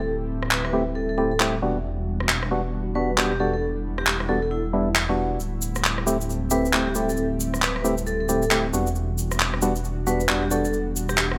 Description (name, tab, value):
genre	UK garage, two-step garage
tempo	135 BPM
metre	4/4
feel	swing 62% on 16ths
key	E minor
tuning	A4 = 440 Hz
part	vibraphone with medium hard mallets	melody	0.0-11.2 s	E4 to B4	-31 LUFS	equal	tape echo
part	airy breathy pad	sustained chords	0.0-11.4 s	G3 to G4	-38 LUFS	equal	chorus
part	dark detuned saw bass	bass	0.0-11.4 s	D1 to E1	-31 LUFS	equal	none
part	deep dark ambient pad	texture	0.0-11.4 s	G3 to F#5	-35 LUFS	equal	chorus, built-in reverb
part	electronic rim click and handclaps	drums	0.4-11.4 s	none	-25 LUFS	equal	none
part	percussive organ stab	stabs	0.7-10.7 s	G3 to G4	-28 LUFS	equal	chorus, tape echo
part	cabasa	percussion	5.4-11.3 s	none	-35 LUFS	equal	none
room	light reverb, digital ambience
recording	none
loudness	-24 LUFS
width	mono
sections	0.0-11.4 A section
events	filter sweep on synth stab 0.0-11.4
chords	0.0 D9sus4; 1.6 Em9; 5.4 D9sus4; 8.7 Em9